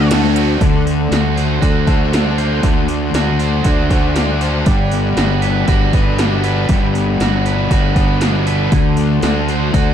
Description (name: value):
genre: rock, shoegaze and dream pop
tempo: 118 BPM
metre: 4/4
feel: straight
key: D mixolydian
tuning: A4 = 440 Hz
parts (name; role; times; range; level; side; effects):
- brassy analog pad; sustained chords; 0.0-9.9 s; G3 to C6; -25 LUFS; right 1 dB; chorus, tremolo
- crunchy overdriven guitar; riff; 0.0-9.9 s; D3 to C5; -21 LUFS; right 16 dB; reverse reverb
- thick fuzz guitar; riff; 0.0-9.9 s; D3 to C5; -19 LUFS; left 13 dB; distortion, lush chorus
- fuzz fingered electric bass; bass; 0.0-9.9 s; G1 to D2; -17 LUFS; equal; overdrive
- 80s electronic pad drums; drums; 0.1-9.9 s; hi-hat, kick drum, ride cymbal, snare drum; -17 LUFS; equal; none
room: digital ambience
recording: dark, warm production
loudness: -12 LUFS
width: side -9 dB against mid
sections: 0.6-9.9 A section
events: none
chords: 0.0 D7; 4.7 Gmaj7; 8.7 D7